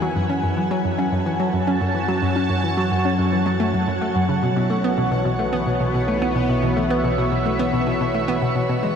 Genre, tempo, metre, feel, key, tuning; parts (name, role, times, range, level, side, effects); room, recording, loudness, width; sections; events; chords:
ambient, sequencer-driven space music; 109 BPM; 4/4; straight; A4 = 440 Hz
sweeping resonant pad; sustained chords; 0.0-9.0 s; A3 to A5; -24 LUFS; equal; chorus
concert harp; arpeggios; 0.0-9.0 s; E3 to A4; -25 LUFS; left 2 dB; auto-pan, analog delay
hollow square pluck; riff; 0.0-8.9 s; F#2 to C#4; -22 LUFS; equal; chorus, phaser, analog delay
analog drone; bass; 0.8-9.0 s; A1 to F#2; -30 LUFS; right 1 dB; chorus, phaser
pulsing gated texture; texture; 0.0-9.0 s; F#5; -34 LUFS; right 2 dB; chorus, built-in reverb
wet shimmer reverb, RT60 8.1 s; cassette tape; -18 LUFS; side -7 dB against mid
0.0-9.0 A section
0.0 F#m; 4.4 Bsus4